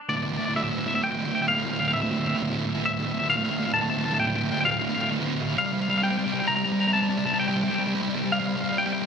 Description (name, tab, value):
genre	rock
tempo	44 BPM (dotted quarters)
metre	6/8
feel	straight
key	D minor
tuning	A4 = 441 Hz
part	twangy electric guitar	melody	0.1-9.1 s	D5 to Bb5	-26 LUFS	left 1 dB	tremolo, digital delay
part	fuzz guitar	riff	0.1-9.1 s	D2 to G3	-25 LUFS	right 1 dB	distortion
room	moderate recital hall reverb, RT60 1.8 s, digital ambience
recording	none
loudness	-23 LUFS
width	side -6 dB against mid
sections	0.1-9.1 A section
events	build-up 0.1-9.1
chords	0.1 D5; 5.6 C5